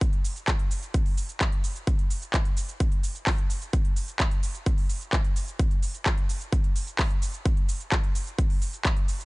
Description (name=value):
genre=EDM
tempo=129 BPM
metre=4/4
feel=straight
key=none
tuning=none
part: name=big-room dance drum kit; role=drums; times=0.0-9.2 s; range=cabasa, handclaps, hi-hat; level=-32 LUFS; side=equal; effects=none
part: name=electronic kick drum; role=drums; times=0.0-8.9 s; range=none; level=-24 LUFS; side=equal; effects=none
room=digital ambience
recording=nothing above 10.3 kHz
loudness=-24 LUFS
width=side -23 dB against mid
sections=0.0-9.2 A section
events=none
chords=none